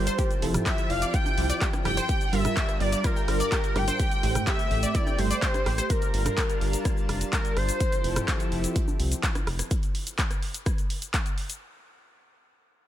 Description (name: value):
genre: progressive house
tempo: 126 BPM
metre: 4/4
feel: straight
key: unclear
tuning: A4 = 436 Hz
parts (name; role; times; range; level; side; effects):
- expressive portamento lead; melody; 0.0-8.3 s; Bb4 to G5; -31 LUFS; left 1 dB; ensemble chorus, digital delay
- clear studio violin section; second line; 0.0-5.9 s; Bb4 to G5; -38 LUFS; equal; sidechain pumping, tape echo
- lush unison pad; sustained chords; 0.0-9.7 s; F3 to A5; -34 LUFS; left 1 dB; chorus, sidechain pumping
- analog pluck; arpeggios; 0.0-5.8 s; G3 to G6; -34 LUFS; right 1 dB; chorus, sidechain pumping, tape echo
- wide unison pluck; stabs; 0.0-5.8 s; G2 to E5; -33 LUFS; right 5 dB; sidechain pumping, tape echo
- round analog bass; bass; 0.0-9.6 s; F1 to C2; -28 LUFS; equal; sidechain pumping
- house drum kit; drums; 0.1-11.6 s; cabasa, handclaps, hi-hat, rim click; -33 LUFS; equal; overdrive, sidechain pumping on hats, sidechain pumping on perc, sidechain pumping on cymbals
- electronic kick drum; drums; 0.2-11.2 s; none; -27 LUFS; equal; none
- punchy analog drum machine; percussion; 0.5-9.6 s; congas, rim click, toms; -34 LUFS; right 2 dB; sidechain pumping on snare, sidechain pumping on toms, sidechain pumping on perc
room: little or no reverb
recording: none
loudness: -24 LUFS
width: side -12 dB against mid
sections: 0.0-11.6 A section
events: drop 0.0-11.6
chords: 0.2 Fmaj7; 2.1 Gm7; 4.0 Am7; 5.9 Gm7; 7.8 Fmaj7; 9.7 N.C.